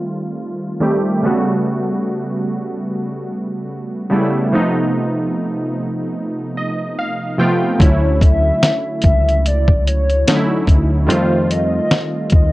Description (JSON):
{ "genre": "lo-fi hip hop", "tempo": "73 BPM", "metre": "4/4", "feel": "swing 57% on 16ths", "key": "unclear", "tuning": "A4 = 440 Hz", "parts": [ { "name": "warm analog keys", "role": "accompaniment", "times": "0.0-12.5 s", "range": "C3 to G5", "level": "-18 LUFS", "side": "right 1 dB", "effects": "chorus, cassette tape, low-pass filter" }, { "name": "warbly nostalgic lead", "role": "melody", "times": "7.8-12.5 s", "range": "C5 to E5", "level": "-20 LUFS", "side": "left 1 dB", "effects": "chorus, low-pass filter, plate reverb" }, { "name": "deep dub fingered electric bass", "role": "bass", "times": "7.8-12.5 s", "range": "C#2 to F2", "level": "-17 LUFS", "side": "equal", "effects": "none" }, { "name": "dusty soul sampler-style drum kit", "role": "drums", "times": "7.8-12.5 s", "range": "hi-hat, kick drum, snare drum", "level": "-13 LUFS", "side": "equal", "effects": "none" } ], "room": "light reverb", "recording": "cassette tape", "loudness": "-15 LUFS", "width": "side -18 dB against mid", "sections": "0.0-7.8 A section; 7.8-12.5 B section", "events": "filter sweep on synth keys 0.0-7.8", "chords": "0.0 F9; 1.2 Gmaj9#11; 4.5 F7#11; 7.8 Dmaj9; 11.1 F9" }